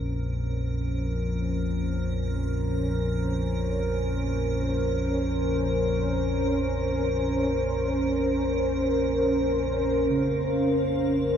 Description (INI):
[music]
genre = dark ambient drone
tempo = free time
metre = none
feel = none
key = Bb minor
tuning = A4 = 440 Hz
[part]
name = sweeping resonant pad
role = sustained chords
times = 0.0-11.4 s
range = Db4 to C5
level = -26 LUFS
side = equal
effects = chorus, shimmer reverb
[part]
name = deep rumbling drone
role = drone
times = 0.0-11.4 s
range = Bb1 to F2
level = -28 LUFS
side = equal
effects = built-in reverb
[part]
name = icy glass pad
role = texture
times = 0.0-11.4 s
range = Bb4 to F5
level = -35 LUFS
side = right 6 dB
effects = chorus, built-in reverb, shimmer reverb
[part]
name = gamelan-type bossed gongs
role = arpeggios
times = 10.1-11.4 s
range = Db3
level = -32 LUFS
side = right 1 dB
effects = none
[sound]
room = wet huge ambient reverb, RT60 9.3 s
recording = none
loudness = -24 LUFS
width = side -8 dB against mid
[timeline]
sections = 0.0-10.1 A section; 10.1-11.4 B section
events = fade-in on analog synth pad 0.0-10.1; fade-in on ambient pad 0.0-10.1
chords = 0.0 Bbm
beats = free time